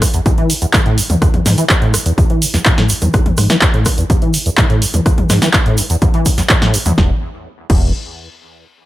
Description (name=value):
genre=acid house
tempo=125 BPM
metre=4/4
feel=straight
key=E mixolydian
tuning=A4 = 440 Hz
part: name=acid bass, saw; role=riff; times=0.0-7.9 s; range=E2 to E3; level=-16 LUFS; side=equal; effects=overdrive, ensemble chorus, tape echo
part: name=electronic kick drum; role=drums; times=0.0-7.8 s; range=none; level=-14 LUFS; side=equal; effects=none
part: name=punchy analog drum machine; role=drums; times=0.0-7.8 s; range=crash cymbal, handclaps, hi-hat, rim click, snare drum, toms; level=-16 LUFS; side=equal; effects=overdrive
part: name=tube shaker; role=percussion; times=0.0-7.0 s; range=none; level=-23 LUFS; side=right 4 dB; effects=none
part: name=round analog bass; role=bass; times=7.0-7.9 s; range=E1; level=-19 LUFS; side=equal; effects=sidechain pumping
room=little or no reverb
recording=none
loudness=-11 LUFS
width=side -16 dB against mid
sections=0.0-7.0 A section; 7.0-8.9 B section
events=filter sweep on acid bass 0.0-7.0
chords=0.0 E5; 7.0 N.C.